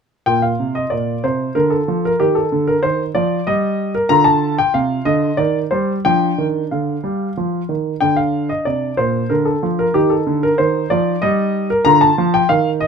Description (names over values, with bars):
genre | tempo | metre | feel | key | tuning
classical-period piano sonatina | 93 BPM | 3/4 | straight | Bb major | A4 = 440 Hz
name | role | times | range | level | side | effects
warm concert grand piano | solo | 0.3-12.9 s | Bb2 to Bb5 | -14 LUFS | equal | none
room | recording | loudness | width
light reverb | close, detailed microphones | -15 LUFS | side -6 dB against mid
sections
0.3-12.9 A section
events
none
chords
0.3 Bb; 2.2 Eb; 4.1 Cmadd9; 5.4 Cm/Eb; 6.1 Dmadd11; 7.4 Ebsus2; 8.0 Bb; 10.0 Eb; 11.9 Dmadd11